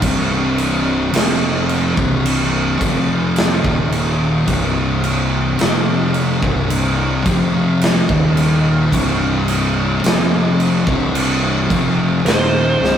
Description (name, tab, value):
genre	stoner and doom metal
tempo	54 BPM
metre	4/4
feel	straight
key	C minor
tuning	A4 = 441 Hz
part	thick fuzz guitar	riff	0.0-13.0 s	C2 to F3	-18 LUFS	left 4 dB	distortion
part	thick fuzz guitar	riff	0.0-13.0 s	C2 to F3	-21 LUFS	right 3 dB	distortion
part	fuzz fingered electric bass	bass	0.0-13.0 s	C1 to F1	-23 LUFS	equal	overdrive
part	big rock drum kit	drums	0.0-13.0 s	crash cymbal, kick drum, snare drum	-18 LUFS	right 1 dB	none
part	fuzz lead guitar	melody	12.3-13.0 s	C5	-17 LUFS	right 1 dB	wah, distortion
room	light reverb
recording	rough rehearsal-room recording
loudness	-14 LUFS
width	side -9 dB against mid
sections	0.0-13.0 A section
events	drum fill 12.8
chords	0.0 Cm